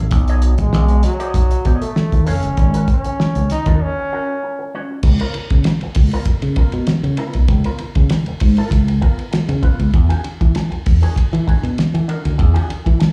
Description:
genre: funk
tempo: 98 BPM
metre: 4/4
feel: straight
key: Db mixolydian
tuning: A4 = 440 Hz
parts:
  - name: fingered electric bass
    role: bass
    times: 0.0-13.0 s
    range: F1 to E3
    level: -19 LUFS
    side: equal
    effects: none
  - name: electric guitar with an envelope filter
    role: accompaniment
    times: 0.1-13.0 s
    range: Cb4 to F5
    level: -31 LUFS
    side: equal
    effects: slapback echo
  - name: cloth-damped thuddy drum kit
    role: drums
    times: 0.1-13.1 s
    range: crash cymbal, hi-hat, kick drum, ride cymbal, snare drum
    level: -19 LUFS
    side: equal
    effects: none
  - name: bright trombone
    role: melody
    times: 0.4-4.7 s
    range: Gb3 to Eb4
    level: -25 LUFS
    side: equal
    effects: slapback echo
room: light reverb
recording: live gig heard through the venue's PA, club reverb, studio reverb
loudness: -16 LUFS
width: mono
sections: 0.0-5.0 A section; 5.0-13.1 B section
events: break 3.8-5.0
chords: 0.0 Cb9; 2.6 Ab9sus4 (rootless); 5.0 Db6; 9.9 E9

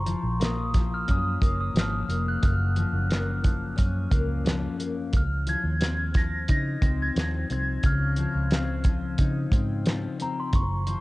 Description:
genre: indie pop, bedroom pop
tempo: 89 BPM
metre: 4/4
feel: straight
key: Db major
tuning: A4 = 441 Hz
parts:
  - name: glockenspiel with rubber mallets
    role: melody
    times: 0.0-11.0 s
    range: Bb5 to Bb6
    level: -32 LUFS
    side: equal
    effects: analog chorus, cassette tape, tape echo
  - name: fingerpicked steel-string acoustic guitar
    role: accompaniment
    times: 0.0-11.0 s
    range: Gb2 to Eb4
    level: -30 LUFS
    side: left 4 dB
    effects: lush chorus, warbly pitch drift, cassette tape
  - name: vintage muted fingered electric bass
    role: bass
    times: 0.0-10.9 s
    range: F1 to Db3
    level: -28 LUFS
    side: equal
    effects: none
  - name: cloth-damped thuddy drum kit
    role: drums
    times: 0.1-11.0 s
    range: hi-hat, kick drum, snare drum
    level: -24 LUFS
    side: equal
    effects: none
room: studio ambience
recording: home recording on cassette, nothing above 10.7 kHz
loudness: -23 LUFS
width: side -20 dB against mid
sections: 0.0-11.0 A section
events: none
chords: 0.0 Gbmaj7; 5.1 Dbmaj9

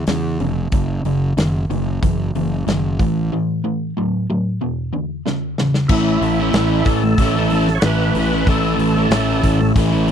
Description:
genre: classic rock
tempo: 93 BPM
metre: 4/4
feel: straight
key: A major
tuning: A4 = 438 Hz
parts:
  - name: crunchy overdriven guitar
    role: riff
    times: 0.0-10.1 s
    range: E2 to E4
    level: -19 LUFS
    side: equal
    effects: none
  - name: fuzz fingered electric bass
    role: bass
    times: 0.0-10.1 s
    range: F1 to E2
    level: -20 LUFS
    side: equal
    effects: overdrive
  - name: big rock drum kit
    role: drums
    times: 0.1-10.1 s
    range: crash cymbal, hi-hat, kick drum, snare drum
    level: -20 LUFS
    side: equal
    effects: none
  - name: overdriven tonewheel organ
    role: melody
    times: 5.9-9.7 s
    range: E4 to C#5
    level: -22 LUFS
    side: right 2 dB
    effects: chorus vibrato, slow rotary speaker
room: little or no reverb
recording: dry, close 1970s-style studio recording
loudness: -16 LUFS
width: side -8 dB against mid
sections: 0.0-5.9 A section; 5.9-10.1 B section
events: break 3.3-5.9; drum fill 5.3-5.9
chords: 0.0 E5; 0.7 F#5; 3.0 A5; 4.6 E5; 5.9 A

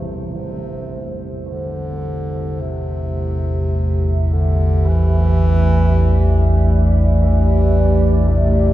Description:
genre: dark ambient drone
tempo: 53 BPM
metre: 4/4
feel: straight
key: A minor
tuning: A4 = 441 Hz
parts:
  - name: mellow bass clarinet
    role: melody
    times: 0.0-8.7 s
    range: C3 to E3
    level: -23 LUFS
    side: right 1 dB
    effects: tape echo
  - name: dark analog pad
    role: sustained chords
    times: 0.0-8.7 s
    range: A3 to E5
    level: -23 LUFS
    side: equal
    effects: wide subtle chorus
  - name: carillon bells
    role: arpeggios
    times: 0.0-8.7 s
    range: A2 to E4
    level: -34 LUFS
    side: right 3 dB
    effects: none
  - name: deep rumbling drone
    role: drone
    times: 0.0-8.7 s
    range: A1 to E2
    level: -16 LUFS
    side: equal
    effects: built-in reverb, wide subtle chorus
room: wet cathedral reverb, RT60 6.8 s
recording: in a vast, echoing space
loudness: -14 LUFS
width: side -14 dB against mid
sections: 0.0-8.7 A section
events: fade-in on bass clarinet 0.0-8.7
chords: 0.0 Am

